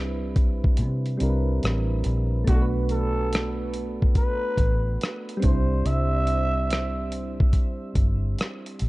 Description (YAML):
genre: lo-fi hip hop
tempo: 71 BPM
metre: 4/4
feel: swing 65% on 16ths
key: unclear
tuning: A4 = 440 Hz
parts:
  - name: soft electric-piano-like synth keys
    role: accompaniment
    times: 0.0-8.9 s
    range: G3 to C5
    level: -30 LUFS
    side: right 1 dB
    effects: chorus, cassette tape
  - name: vintage muted fingered electric bass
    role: bass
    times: 0.0-8.9 s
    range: G1 to C3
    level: -25 LUFS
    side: equal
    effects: none
  - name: dusty soul sampler-style drum kit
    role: drums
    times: 0.4-8.9 s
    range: hi-hat, kick drum, rim click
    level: -23 LUFS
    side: equal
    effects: vintage 12-bit sampler grit
  - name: trumpet with bucket mute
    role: melody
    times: 2.5-7.6 s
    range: F#4 to E5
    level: -30 LUFS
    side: right 1 dB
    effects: tape echo
room: little or no reverb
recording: dark, warm production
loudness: -22 LUFS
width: side -20 dB against mid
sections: 0.0-8.9 A section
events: kick muted 0.8-2.5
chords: 0.0 Cmaj7; 2.5 Bm7; 5.4 C